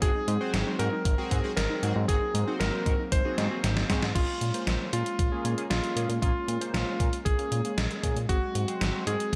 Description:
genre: synthwave.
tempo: 116 BPM.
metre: 4/4.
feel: straight.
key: Bb minor.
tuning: A4 = 440 Hz.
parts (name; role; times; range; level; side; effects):
clear electric grand piano; melody; 0.0-9.4 s; F4 to C5; -34 LUFS; equal; delay.
warm analog pad; sustained chords; 0.0-9.4 s; Gb3 to Db4; -40 LUFS; equal; chorus, sidechain pumping.
warbly dusty pluck; arpeggios; 0.0-4.1 s; Ab3 to Ab4; -42 LUFS; equal; none.
chorused polysynth; stabs; 0.0-9.1 s; Bb3 to C5; -40 LUFS; equal; delay.
fat analog bass; bass; 0.0-9.4 s; Ab1 to Bb2; -32 LUFS; equal; sidechain pumping.
electronic kick drum; drums; 0.0-9.4 s; none; -30 LUFS; equal; none.
gated 80s digital drum machine; drums; 0.0-9.4 s; crash cymbal, hi-hat, snare drum; -35 LUFS; equal; gated reverb, gated reverb snare.
room: light reverb.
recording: none.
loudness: -28 LUFS.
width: mono.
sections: 0.0-4.2 A section; 4.2-9.4 B section.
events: drum fill 3.4-4.2.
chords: 0.0 Ab7; 4.2 Bbm7; 8.3 Ab7.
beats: | 0.02 0.54 1.05 1.57 | 2.09 2.60 3.12 3.64 | 4.16 4.67 5.19 5.71 | 6.22 6.74 7.26 7.78 | 8.29 8.81 9.33.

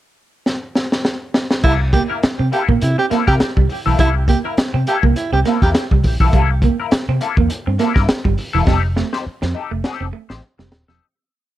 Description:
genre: funk.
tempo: 102 BPM.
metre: 4/4.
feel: swing 56% on 16ths.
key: C mixolydian.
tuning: A4 = 441 Hz.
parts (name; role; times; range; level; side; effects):
crunchy breakbeat drum kit; drums; 0.5-11.0 s; crash cymbal, hi-hat, kick drum, snare drum; -18 LUFS; equal; none.
breathy tenor saxophone; second line; 1.6-5.7 s; E4 to G4; -22 LUFS; right 3 dB; tape echo.
clean electric guitar; accompaniment; 1.6-11.1 s; Bb3 to C5; -22 LUFS; left 7 dB; wah.
semi-hollow electric guitar; riff; 1.6-11.0 s; E3 to C4; -22 LUFS; right 9 dB; none.
vintage muted fingered electric bass; bass; 1.6-11.0 s; Eb1 to C3; -18 LUFS; equal; none.
room: little or no reverb.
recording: dark, warm production.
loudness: -14 LUFS.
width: side -14 dB against mid.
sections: 0.0-1.6 pickup bar; 1.6-11.0 groove.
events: drum fill 0.5-1.6, 8.7-11.0; fade-out 8.7-11.0.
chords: 0.0 N.C.; 1.6 C6; 8.7 F9.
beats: 0.46 1.05 | 1.64 2.23 2.81 3.40 | 3.99 4.57 5.16 5.75 | 6.33 6.92 7.50 8.09 | 8.67 9.26 9.84 10.43.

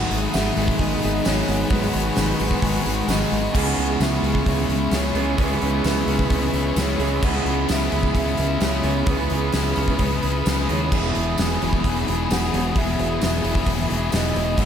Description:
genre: rock, shoegaze and dream pop.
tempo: 130 BPM.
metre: 4/4.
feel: straight.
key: unclear.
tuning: A4 = 440 Hz.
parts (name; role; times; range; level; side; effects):
hollow clarinet-like synth lead; melody; 0.0-14.7 s; B4 to G#5; -30 LUFS; right 1 dB; chorus, analog delay.
sweeping resonant pad; sustained chords; 0.0-14.7 s; G#4 to E6; -30 LUFS; equal; chorus.
picked twelve-string acoustic guitar; arpeggios; 0.0-14.7 s; F#3 to G#4; -34 LUFS; right 4 dB; none.
electric guitar through a small old amp; riff; 0.0-14.7 s; E2 to G#4; -29 LUFS; right 8 dB; reverse reverb.
thick fuzz guitar; riff; 0.0-14.7 s; E2 to C#4; -26 LUFS; left 6 dB; distortion, analog chorus.
tight distorted guitar; riff; 0.0-14.7 s; E2 to C#4; -28 LUFS; equal; distortion.
growling fingered electric bass; bass; 0.0-14.7 s; E1 to D#2; -25 LUFS; equal; overdrive.
gated 80s drum kit; drums; 0.1-14.7 s; crash cymbal, hi-hat, kick drum, snare drum; -25 LUFS; equal; none.
tambourine; percussion; 0.3-14.2 s; none; -37 LUFS; right 9 dB; none.
room: moderate cathedral reverb, RT60 4.5 s.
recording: dreamy mix soaked in reverb.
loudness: -19 LUFS.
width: side -8 dB against mid.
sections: 0.0-3.5 A section; 3.5-14.7 B section.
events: none.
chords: 0.0 G#m7; 3.5 C#m7; 10.9 Emaj7.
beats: 0.34 0.80 1.25 | 1.71 2.17 2.63 3.09 | 3.55 4.01 4.47 4.93 | 5.39 5.85 6.31 6.77 | 7.23 7.69 8.15 8.62 | 9.08 9.54 10.00 10.46 | 10.92 11.38 11.84 12.30 | 12.76 13.21 13.67 14.13 | 14.59.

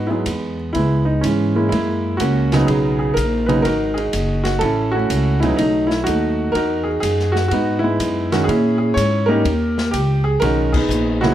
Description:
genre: jazz piano trio.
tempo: 124 BPM.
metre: 4/4.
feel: swing 67% on 8ths.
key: unclear.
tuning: A4 = 440 Hz.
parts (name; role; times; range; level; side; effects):
warm concert grand piano; melody; 0.0-11.3 s; C#3 to C#5; -18 LUFS; right 1 dB; none.
upright bass; bass; 0.0-11.3 s; F#1 to A#2; -20 LUFS; equal; none.
open jazz drum kit; drums; 0.3-11.3 s; crash cymbal, hi-hat, kick drum, ride cymbal, snare drum; -29 LUFS; left 1 dB; none.
room: light reverb.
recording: none.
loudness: -16 LUFS.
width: side -12 dB against mid.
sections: 0.0-11.3 A section.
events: band accent 10.7.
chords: 0.0 Emaj7; 0.8 C#m7; 1.7 F#9; 2.7 B6; 4.6 F#m7; 5.6 B7; 6.6 Emaj9; 8.5 A#m7b5; 9.5 D#7; 10.4 G#m9.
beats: 0.27 | 0.75 1.24 1.72 2.20 | 2.69 3.17 3.65 4.14 | 4.62 5.10 5.59 6.07 | 6.55 7.04 7.52 8.00 | 8.49 8.97 9.45 9.94 | 10.42 10.90.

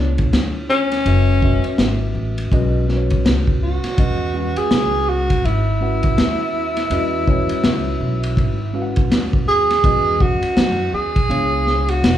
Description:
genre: hip hop, jazz-hop.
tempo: 82 BPM.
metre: 4/4.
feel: swing 62% on 16ths.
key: E major.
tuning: A4 = 435 Hz.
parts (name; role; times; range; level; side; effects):
breathy tenor saxophone; melody; 0.0-12.2 s; C#4 to G#4; -19 LUFS; right 1 dB; none.
mellow tine electric piano; accompaniment; 0.0-12.2 s; G#3 to F#5; -25 LUFS; left 1 dB; medium stereo tremolo.
upright bass; bass; 0.0-12.2 s; E#1 to F#2; -21 LUFS; equal; none.
crunchy breakbeat drum kit; drums; 0.2-12.2 s; hi-hat, kick drum, ride cymbal, snare drum; -20 LUFS; equal; none.
room: moderate large studio reverb, RT60 0.8 s.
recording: band playing live in one room.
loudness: -15 LUFS.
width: side -11 dB against mid.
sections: 0.0-9.8 A section; 9.8-12.2 B section.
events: none.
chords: 0.0 C#7b9; 1.1 F#m9; 2.5 B; 4.0 E69; 11.3 C#7b9.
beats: 0.32 | 1.05 1.79 2.52 3.25 | 3.98 4.71 5.45 6.18 | 6.91 7.64 8.37 9.10 | 9.84 10.57 11.30 12.03.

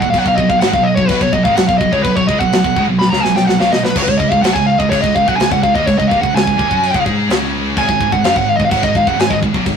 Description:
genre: heavy metal.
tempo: 126 BPM.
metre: 4/4.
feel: straight.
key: unclear.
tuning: A4 = 440 Hz.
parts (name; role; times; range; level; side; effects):
bluesy overdriven lead guitar; melody; 0.0-9.4 s; B4 to B5; -15 LUFS; equal; distortion.
high-gain distorted guitar; riff; 0.0-9.8 s; Eb2 to Ab4; -22 LUFS; left 6 dB; distortion.
scooped high-gain guitar; riff; 0.0-9.8 s; Eb2 to Ab4; -18 LUFS; right 4 dB; distortion.
fuzz picked electric bass; bass; 0.0-9.8 s; Eb1 to Ab2; -22 LUFS; left 1 dB; overdrive.
tight metal drum kit; drums; 0.0-9.8 s; china cymbal, crash cymbal, kick drum, snare drum; -18 LUFS; left 1 dB; none.
room: light reverb.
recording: rough rehearsal-room recording.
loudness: -11 LUFS.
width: side -7 dB against mid.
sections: 0.0-9.8 A section.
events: lead electric guitar solo 0.0-9.8; drum fill 3.0-4.0.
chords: 0.1 B5; 4.0 Db5; 7.8 Ab5.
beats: | 0.14 0.62 1.09 1.57 | 2.05 2.52 3.00 3.48 | 3.95 4.43 4.91 5.38 | 5.86 6.33 6.81 7.29 | 7.76 8.24 8.71 9.19 | 9.66.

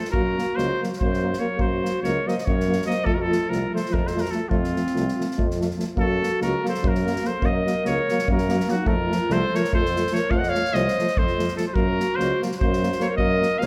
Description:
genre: balkan folk, Balkan brass band.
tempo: 289 BPM (eighths).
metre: 7/8.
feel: straight.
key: unclear.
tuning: A4 = 441 Hz.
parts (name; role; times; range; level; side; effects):
clear trumpet; melody; 0.0-13.7 s; F4 to Gb5; -29 LUFS; equal; tape echo.
dark clarinet; second line; 0.0-13.7 s; C4 to Eb5; -30 LUFS; equal; none.
warm trombone; accompaniment; 0.0-13.7 s; A3 to Bb3; -32 LUFS; equal; none.
dark euphonium; accompaniment; 0.1-13.7 s; F3 to Gb3; -32 LUFS; equal; none.
clear tuba; bass; 0.1-13.7 s; C2 to Gb2; -30 LUFS; equal; none.
unplugged drum kit; percussion; 0.1-13.7 s; kick drum, snare drum; -30 LUFS; equal; none.
room: wet recital hall reverb, RT60 1.3 s.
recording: heard from further back in the room.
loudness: -23 LUFS.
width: mono.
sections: 0.0-6.0 A section; 6.0-13.7 A section.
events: none.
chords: 0.1 Gb; 3.0 F; 6.0 Gb; 8.9 F; 11.8 Gb.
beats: | 0.13 0.34 0.55 0.76 0.97 1.18 1.38 | 1.59 1.80 2.01 2.22 2.42 2.63 2.84 | 3.05 3.26 3.47 3.67 3.88 4.09 4.30 | 4.51 4.72 4.93 5.13 5.34 5.55 5.76 | 5.97 6.17 6.38 6.59 6.80 7.01 7.21 | 7.42 7.63 7.83 8.04 8.25 8.46 8.66 | 8.87 9.08 9.28 9.49 9.70 9.90 10.11 | 10.31 10.52 10.73 10.93 11.14 11.34 11.55 | 11.75 11.96 12.16 12.37 12.57 12.78 12.98 | 13.19 13.39 13.60.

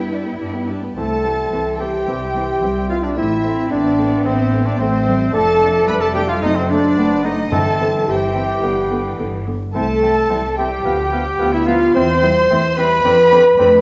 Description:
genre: quick classical-period movement for symphony orchestra.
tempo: 109 BPM.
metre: 4/4.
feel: straight.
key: C major.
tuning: A4 = 436 Hz.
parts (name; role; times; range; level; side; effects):
warm studio violin section; melody; 0.0-13.8 s; C5 to C6; -33 LUFS; equal; none.
rich chamber violin section; second line; 0.0-13.8 s; G4 to C6; -32 LUFS; equal; none.
dark studio viola section; accompaniment; 0.0-13.7 s; D3 to D4; -29 LUFS; equal; none.
warm French horn section; sustained chords; 0.0-13.8 s; B3 to C5; -20 LUFS; equal; none.
rich studio cello section; bass; 0.0-13.8 s; E3 to E4; -28 LUFS; equal; none.
rich studio double bass section; bass; 0.0-13.8 s; F1 to G2; -26 LUFS; equal; none.
bright clarinet; second line; 1.0-13.8 s; C4 to C5; -30 LUFS; equal; none.
dark cor anglais; second line; 1.0-13.7 s; C5 to F5; -32 LUFS; equal; none.
mellow hollow concert flute; second line; 1.0-13.6 s; C5 to C6; -30 LUFS; equal; none.
warm bassoon; accompaniment; 1.0-13.7 s; A3 to C4; -31 LUFS; equal; none.
clear trumpet; stabs; 1.0-13.8 s; C4 to C5; -26 LUFS; equal; none.
timpani; percussion; 7.5-8.3 s; G2; -28 LUFS; equal; none.
room: moderate concert hall reverb, RT60 1.7 s.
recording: worn, warbling old tape, cassette tape, warbly pitch drift, nothing above 7.8 kHz.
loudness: -17 LUFS.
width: mono.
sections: 1.0-13.8 A section.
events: none.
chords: 0.0 G; 1.0 C; 3.2 Am; 5.3 Dm/F; 6.4 F#dim; 7.5 C/G; 8.6 G; 9.7 C; 10.8 G7/D; 12.0 C/E; 13.0 Dm7/F.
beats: 0.40 | 0.97 1.52 2.08 2.62 | 3.17 3.71 4.25 4.80 | 5.34 5.88 6.43 6.98 | 7.53 8.08 8.64 9.19 | 9.75 10.30 10.85 11.40 | 11.96 12.50 13.04 13.59.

